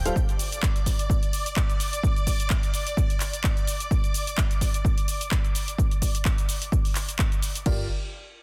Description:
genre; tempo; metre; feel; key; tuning
piano house; 128 BPM; 4/4; swing 55% on 16ths; unclear; A4 = 441 Hz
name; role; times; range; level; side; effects
string machine, violins; sustained chords; 0.0-7.7 s; D5 to G6; -37 LUFS; equal; ensemble chorus, vintage 12-bit sampler grit, sidechain pumping
solid FM bass; bass; 0.0-0.1, 7.7-7.9 s; D1 to G1; -32 LUFS; equal; tube saturation, sidechain pumping
warm upright piano; riff; 0.1, 7.7-7.8 s; G3 to F5; -35 LUFS; equal; sidechain pumping, dub echo
house drum kit; drums; 0.1-7.8 s; crash cymbal, handclaps, hi-hat, shaker; -34 LUFS; equal; small room ambience
electronic kick drum; drums; 0.2-7.8 s; none; -26 LUFS; equal; small room ambience
room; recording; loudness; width
digital ambience; dense, heavily limited modern master; -25 LUFS; mono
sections
0.0-7.7 A section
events
none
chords
0.2 N.C.; 7.7 Gm7

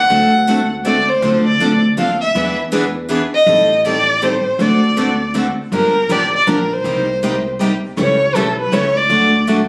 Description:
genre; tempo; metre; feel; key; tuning
acoustic string swing (jazz manouche); 160 BPM; 3/4; swing 63% on 8ths; unclear; A4 = 440 Hz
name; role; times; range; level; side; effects
warm violin; melody; 0.0-9.5 s; A4 to F#5; -17 LUFS; equal; none
upright bass; bass; 0.0-9.7 s; G1 to E2; -22 LUFS; equal; none
picked steel-string acoustic guitar; accompaniment; 0.1-9.6 s; C3 to A4; -24 LUFS; equal; none
picked steel-string acoustic guitar; accompaniment; 0.1-9.6 s; C3 to C#5; -24 LUFS; equal; none
room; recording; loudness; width
moderate studio reverb, RT60 0.8 s; recorded on a phone in the room, club reverb, compression; -15 LUFS; mono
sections
0.0-5.7 A section; 5.7-9.7 B section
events
none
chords
0.1 D7; 1.2 Dm7; 2.3 E7; 3.5 Am7b5; 4.6 D7; 5.7 Gm7; 6.8 Cm7; 8.0 A7; 9.1 D

